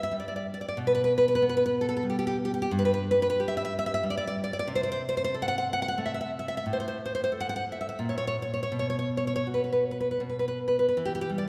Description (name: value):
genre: romantic piece for solo classical guitar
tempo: 79-96 BPM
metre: 3/4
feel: rubato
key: unclear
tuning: A4 = 440 Hz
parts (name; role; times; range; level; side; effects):
- nylon-string guitar; solo; 0.0-11.5 s; G2 to F#5; -28 LUFS; equal; none
room: wet church reverb, RT60 2.8 s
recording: recorded in a church or concert hall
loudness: -28 LUFS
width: mono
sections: 0.0-11.0 A section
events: none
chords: 0.0 N.C.; 0.8 G/B; 2.7 N.C.; 4.7 Am/C; 6.6 N.C.; 8.7 B5; 10.2 N.C.; 11.0 Em